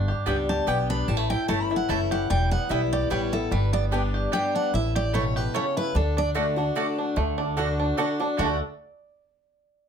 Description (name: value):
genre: bluegrass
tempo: 148 BPM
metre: 3/4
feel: swing 54% on 8ths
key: D major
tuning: A4 = 440 Hz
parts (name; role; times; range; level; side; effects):
- picked steel-string acoustic guitar; accompaniment; 0.0-8.6 s; E2 to G4; -28 LUFS; left 4 dB; none
- bluegrass banjo; arpeggios; 0.0-8.6 s; G3 to A4; -30 LUFS; right 3 dB; none
- upright bass; bass; 0.0-8.6 s; E1 to D2; -27 LUFS; equal; none
- mandolin; stabs; 0.3-8.6 s; A3 to A5; -31 LUFS; right 3 dB; none
- picked steel-string acoustic guitar; melody; 0.5-6.3, 8.4-8.6 s; A4 to B5; -29 LUFS; right 1 dB; none
room: light reverb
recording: none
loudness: -22 LUFS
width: side -7 dB against mid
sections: 0.0-7.2 A section; 7.2-8.4 B section; 8.4-9.6 C section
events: none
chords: 0.0 G; 1.1 A; 2.3 Em; 3.5 G; 4.7 A; 6.0 D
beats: 0.27 0.68 | 1.08 1.49 1.89 | 2.30 2.70 3.11 | 3.52 3.92 4.33 | 4.73 5.14 5.55 | 5.95 6.36 6.76 | 7.17 7.58 7.98 | 8.39